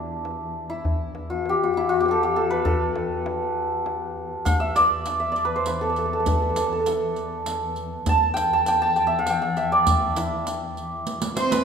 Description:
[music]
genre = Persian modal ensemble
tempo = 100 BPM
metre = 3/4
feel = straight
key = E dastgah shur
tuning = A4 = 440 Hz
[part]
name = santur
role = melody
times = 0.0-11.6 s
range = D4 to A5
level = -22 LUFS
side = equal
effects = none
[part]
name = dark studio cello section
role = drone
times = 0.0-11.6 s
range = E2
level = -33 LUFS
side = left 2 dB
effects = none
[part]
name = tombak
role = percussion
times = 0.3-11.6 s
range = none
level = -28 LUFS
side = left 1 dB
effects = none
[part]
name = riq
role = percussion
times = 4.5-11.6 s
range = none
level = -32 LUFS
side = right 4 dB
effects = none
[part]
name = clear cello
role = second line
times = 11.4-11.6 s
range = C4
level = -26 LUFS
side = right 5 dB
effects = none
[part]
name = rich violin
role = second line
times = 11.4-11.6 s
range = B4 to C5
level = -25 LUFS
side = left 2 dB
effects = none
[sound]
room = moderate recital hall reverb, RT60 1.7 s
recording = minimal, uncompressed stereo recording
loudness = -21 LUFS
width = side -6 dB against mid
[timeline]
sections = 0.0-11.6 A section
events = drum fill 11.1-11.6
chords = none

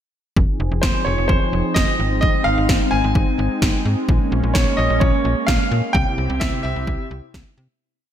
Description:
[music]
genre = synth-pop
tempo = 129 BPM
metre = 4/4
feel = straight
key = F minor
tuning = A4 = 439 Hz
[part]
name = warm analog pad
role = sustained chords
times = 0.4-7.8 s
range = C3 to Ab4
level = -23 LUFS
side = equal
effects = wide subtle chorus
[part]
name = slap-like FM bass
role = bass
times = 0.4-7.7 s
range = F1 to C3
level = -21 LUFS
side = equal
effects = none
[part]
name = 80s electronic pad drums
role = drums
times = 0.4-7.5 s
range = kick drum, snare drum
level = -20 LUFS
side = equal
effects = none
[part]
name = clear baby grand piano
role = melody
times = 0.8-7.1 s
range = C5 to Ab5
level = -23 LUFS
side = right 1 dB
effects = ping-pong delay
[sound]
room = moderate lush hall reverb, RT60 1.9 s, digital ambience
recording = dreamy mix soaked in reverb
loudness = -16 LUFS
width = side -10 dB against mid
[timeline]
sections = 0.4-7.8 verse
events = fade-out 5.9-7.8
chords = 0.4 Fm7; 2.0 Ab; 4.1 Bbm7; 5.9 C

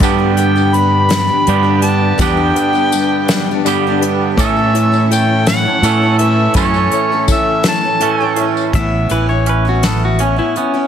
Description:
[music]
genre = folk rock and heartland rock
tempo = 55 BPM (dotted quarters)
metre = 6/8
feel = straight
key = A mixolydian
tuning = A4 = 440 Hz
[part]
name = barky reed electric piano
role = accompaniment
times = 0.0-8.7 s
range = D4 to D5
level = -24 LUFS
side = left 7 dB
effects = overdrive, fast tremolo
[part]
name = picked steel-string acoustic guitar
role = accompaniment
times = 0.0-10.9 s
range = G2 to A4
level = -21 LUFS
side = left 7 dB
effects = none
[part]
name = warm studio string section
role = sustained chords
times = 0.0-8.7 s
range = B3 to C#5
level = -27 LUFS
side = left 1 dB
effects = none
[part]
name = twangy electric guitar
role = riff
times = 0.0-10.9 s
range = G2 to A4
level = -18 LUFS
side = right 11 dB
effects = spring reverb
[part]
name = fingered electric bass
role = bass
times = 0.0-10.4 s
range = A1 to A2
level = -15 LUFS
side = equal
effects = none
[part]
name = soft brush drum kit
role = drums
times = 0.0-10.7 s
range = hi-hat, kick drum, snare drum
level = -18 LUFS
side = equal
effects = none
[part]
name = tambourine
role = percussion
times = 0.0-8.7 s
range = none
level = -27 LUFS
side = left 15 dB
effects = none
[part]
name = mellow harmonica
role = melody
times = 0.4-8.4 s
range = C#5 to B5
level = -17 LUFS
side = left 1 dB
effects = tape echo
[part]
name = pedal steel guitar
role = second line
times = 8.8-10.9 s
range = C#4 to E5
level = -19 LUFS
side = left 5 dB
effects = none
[sound]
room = light reverb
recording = heavily compressed radio sound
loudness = -11 LUFS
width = side -8 dB against mid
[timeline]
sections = 0.0-8.7 A section; 8.7-10.9 B section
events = none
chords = 0.0 G; 4.4 A; 8.7 Aadd9

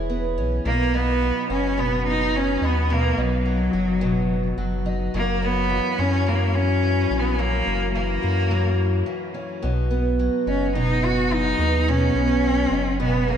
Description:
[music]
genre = folktronica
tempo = 107 BPM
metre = 4/4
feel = swing 56% on 16ths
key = B major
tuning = A4 = 440 Hz
[part]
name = fingerpicked twelve-string acoustic guitar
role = arpeggios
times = 0.0-13.4 s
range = F#2 to G#4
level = -24 LUFS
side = right 1 dB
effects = vintage 12-bit sampler grit, tape echo
[part]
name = warm sub bass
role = bass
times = 0.0-13.4 s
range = E1 to F#2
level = -24 LUFS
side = equal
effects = none
[part]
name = warm cello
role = melody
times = 0.7-13.4 s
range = F#3 to F#4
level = -23 LUFS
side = equal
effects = tape echo
[sound]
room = moderate church reverb, RT60 3.4 s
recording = dreamy mix soaked in reverb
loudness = -19 LUFS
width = side -8 dB against mid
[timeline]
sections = 0.0-9.6 A section; 9.6-13.4 B section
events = break 9.1-9.6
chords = 0.0 E6; 0.7 B; 5.1 F#7; 9.6 B6

